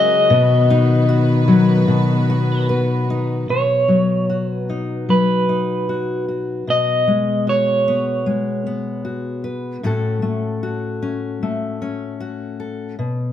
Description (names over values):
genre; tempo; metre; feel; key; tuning
acoustic folk-pop ballad; 76 BPM; 4/4; straight; B major; A4 = 440 Hz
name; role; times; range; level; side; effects
electric guitar at the edge of break-up; melody; 0.0-9.4 s; B4 to D#5; -19 LUFS; right 1 dB; tremolo
fingerpicked steel-string acoustic guitar; accompaniment; 0.0-13.3 s; A2 to B4; -18 LUFS; left 2 dB; none
warm chamber string section; sustained chords; 0.0-3.5 s; C#3 to B4; -24 LUFS; right 2 dB; none
room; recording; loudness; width
moderate large studio reverb, RT60 1.2 s; close, detailed microphones; -16 LUFS; side -10 dB against mid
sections
0.0-3.5 A section; 3.5-13.3 B section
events
none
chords
0.3 B; 6.7 G#m7/B; 9.8 A6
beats
| 0.31 1.09 1.89 2.70 | 3.50 4.30 5.09 5.89 | 6.68 7.47 8.26 9.04 | 9.83 10.62 11.41 12.20 | 12.99